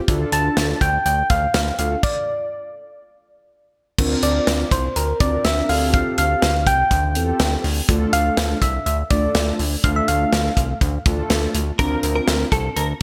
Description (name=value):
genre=synth-pop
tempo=123 BPM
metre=4/4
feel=straight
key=D minor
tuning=A4 = 439 Hz
part: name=mellow synth brass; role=accompaniment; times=0.1-12.5 s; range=A3 to Bb4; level=-27 LUFS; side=equal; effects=chorus
part: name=chorused synth bass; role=bass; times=0.1-12.9 s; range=C2 to E2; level=-25 LUFS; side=equal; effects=none
part: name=modern studio drum kit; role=drums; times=0.1-12.9 s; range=crash cymbal, hi-hat, kick drum, snare drum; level=-24 LUFS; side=equal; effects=gated reverb
part: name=soft struck synth lead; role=melody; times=0.3-11.1 s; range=Bb4 to A5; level=-24 LUFS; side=equal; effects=chorus, digital delay
part: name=direct-recorded clean electric guitar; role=second line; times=11.8-12.9 s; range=A4 to Bb4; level=-27 LUFS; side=equal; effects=ensemble chorus, digital delay
room=moderate lush hall reverb, RT60 2.0 s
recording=bright 1980s-style digital production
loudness=-19 LUFS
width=mono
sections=0.0-4.0 A section; 4.0-13.0 B section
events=stop 2.0-4.0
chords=0.1 Dm; 2.0 N.C.; 4.0 Bbadd9; 5.7 Fadd9; 7.9 Dm; 11.8 Bbadd9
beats=| 0.08 0.57 1.06 1.55 | 2.03 2.52 3.01 3.50 | 3.98 4.47 4.96 5.45 | 5.94 6.42 6.91 7.40 | 7.89 8.38 8.86 9.35 | 9.84 10.33 10.81 11.30 | 11.79 12.28 12.77